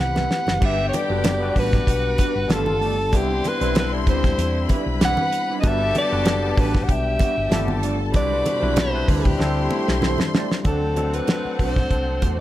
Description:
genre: lush 1970s-style soul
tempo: 96 BPM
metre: 4/4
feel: swing 54% on 16ths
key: G major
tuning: A4 = 439 Hz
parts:
  - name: breathy alto saxophone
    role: melody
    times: 0.0-12.4 s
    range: G4 to F#5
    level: -24 LUFS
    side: equal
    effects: none
  - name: rich studio string section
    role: second line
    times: 0.0-12.4 s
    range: C4 to C6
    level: -30 LUFS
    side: left 1 dB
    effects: none
  - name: overdriven tine electric piano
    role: accompaniment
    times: 0.0-12.4 s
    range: C3 to D5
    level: -27 LUFS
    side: left 3 dB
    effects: none
  - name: mellow electric guitar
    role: riff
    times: 0.0-12.4 s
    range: G3 to D5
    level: -32 LUFS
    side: right 8 dB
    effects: analog chorus
  - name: hollow-body short-scale fingered electric bass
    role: bass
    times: 0.0-12.4 s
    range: F#1 to E2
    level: -25 LUFS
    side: equal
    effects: none
  - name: damped 70s drum kit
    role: drums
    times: 0.2-12.4 s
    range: crash cymbal, hi-hat, kick drum, snare drum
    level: -21 LUFS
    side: equal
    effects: none
  - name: congas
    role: percussion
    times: 0.2-12.4 s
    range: none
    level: -29 LUFS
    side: right 2 dB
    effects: none
  - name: clear horn section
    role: stabs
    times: 0.6-10.3 s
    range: B2 to G4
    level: -32 LUFS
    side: left 5 dB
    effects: slapback echo
room: little or no reverb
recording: none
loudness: -18 LUFS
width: side -14 dB against mid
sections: 0.6-10.7 A section; 10.7-12.4 B section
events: drum fill 0.0-0.6, 9.4-10.7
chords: 0.0 Am9; 0.6 Gmaj7; 2.5 G9; 3.1 Cmaj9; 5.6 Gmaj7; 7.5 G9; 8.1 Cmaj9; 9.4 D9sus4; 10.7 D7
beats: | 0.62 1.25 1.87 2.50 | 3.13 3.75 4.38 5.01 | 5.63 6.26 6.89 7.52 | 8.14 8.77 9.40 10.03 | 10.65 11.28 11.91

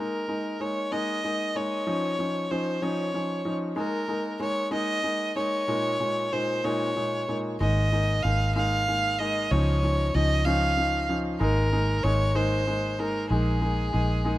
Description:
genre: six-eight pop ballad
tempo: 63 BPM (dotted quarters)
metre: 6/8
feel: straight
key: Ab major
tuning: A4 = 442 Hz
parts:
  - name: warm violin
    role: melody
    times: 0.0-14.4 s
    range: Ab4 to F5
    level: -28 LUFS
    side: equal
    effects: digital delay
  - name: clear baby grand piano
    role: accompaniment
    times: 0.0-14.4 s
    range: Bb2 to Eb4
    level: -29 LUFS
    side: left 1 dB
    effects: none
  - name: vintage muted fingered electric bass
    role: bass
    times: 7.6-14.4 s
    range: Ab1 to Db2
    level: -25 LUFS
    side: equal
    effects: none
room: light reverb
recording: rough home demo mix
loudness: -24 LUFS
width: side -16 dB against mid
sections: 0.0-14.4 A section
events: none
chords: 0.0 Absus2; 1.9 Dbadd9; 3.8 Absus2; 5.7 Ebsus4/Bb; 7.6 Absus2; 9.5 Dbadd9; 11.4 Absus2; 13.3 Ebsus4/Bb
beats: 0.92 | 1.87 2.82 | 3.76 4.72 | 5.68 6.63 | 7.60 8.55 | 9.51 10.46 | 11.41 12.36 | 13.30 14.26

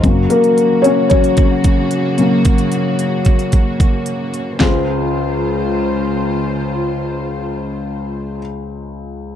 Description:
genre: piano-driven pop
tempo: 112 BPM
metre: 4/4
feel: straight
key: Db major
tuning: A4 = 440 Hz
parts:
  - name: felt-muted upright piano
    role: accompaniment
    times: 0.0-9.4 s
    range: Db2 to Db5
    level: -16 LUFS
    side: left 3 dB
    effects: none
  - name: warm studio string section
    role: sustained chords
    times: 0.0-8.4 s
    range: Db3 to C5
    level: -22 LUFS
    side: right 4 dB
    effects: none
  - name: pop drum kit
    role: drums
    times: 0.0-4.7 s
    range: handclaps, hi-hat, kick drum, snare drum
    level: -14 LUFS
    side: right 1 dB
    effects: none
room: light reverb, small room ambience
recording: dark, warm production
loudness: -13 LUFS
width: side -10 dB against mid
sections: 0.0-4.6 A section; 4.6-8.9 B section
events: felt piano solo 0.0-4.6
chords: 0.0 Gb; 4.6 Dbmaj7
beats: | 0.30 0.84 1.38 1.92 | 2.46 2.99 3.53 4.07 | 4.61 5.14 5.68 6.22 | 6.76 7.30 7.83 8.37

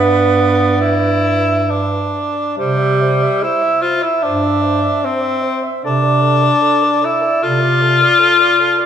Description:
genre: classical, lyrical piece for single-reed quartet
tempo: 66-77 BPM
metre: 4/4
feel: rubato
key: C major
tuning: A4 = 440 Hz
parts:
  - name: mellow clarinet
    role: melody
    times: 0.0-8.9 s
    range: D5 to E5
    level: -26 LUFS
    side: left 2 dB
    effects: none
  - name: mellow alto saxophone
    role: second line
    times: 0.0-8.9 s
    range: A4 to E5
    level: -21 LUFS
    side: right 7 dB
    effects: none
  - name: warm tenor saxophone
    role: accompaniment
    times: 0.0-8.9 s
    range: G3 to F4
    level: -14 LUFS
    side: left 2 dB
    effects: none
  - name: mellow bass clarinet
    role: bass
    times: 0.0-8.1 s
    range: G2 to C3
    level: -18 LUFS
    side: right 2 dB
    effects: none
room: wet recital hall reverb, RT60 1.6 s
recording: none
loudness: -12 LUFS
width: side -9 dB against mid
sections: 0.0-2.6 A section; 2.6-8.9 B section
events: none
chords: 0.0 G; 2.6 C; 5.8 Dm/C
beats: 0.81 1.69 | 2.58 3.42 4.24 5.04 | 5.84 6.64 7.44 8.23

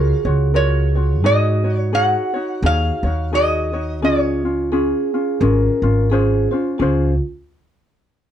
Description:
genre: Hawaiian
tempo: 86 BPM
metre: 4/4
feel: swing 59% on 8ths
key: Db major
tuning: A4 = 442 Hz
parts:
  - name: lap resonator guitar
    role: melody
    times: 0.0-6.1 s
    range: Db5 to Gb5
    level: -20 LUFS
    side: right 1 dB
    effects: none
  - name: vibraphone with soft mallets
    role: second line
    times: 0.0-7.2 s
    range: F4 to Bb4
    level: -24 LUFS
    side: right 4 dB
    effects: none
  - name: ukulele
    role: accompaniment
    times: 0.0-7.1 s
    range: Db4 to Db5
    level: -22 LUFS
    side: left 4 dB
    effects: none
  - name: upright bass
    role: bass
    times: 0.0-7.2 s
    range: Ab1 to Ab2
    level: -18 LUFS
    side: equal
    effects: none
room: little or no reverb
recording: dark, warm production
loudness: -15 LUFS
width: side -10 dB against mid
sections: 0.0-6.8 A section; 6.8-8.3 B section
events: none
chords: 0.0 Gbmaj7; 1.2 Ab7sus4; 4.0 Dbmaj7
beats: 0.54 | 1.24 1.93 2.63 3.32 | 4.02 4.71 5.41 6.10 | 6.80

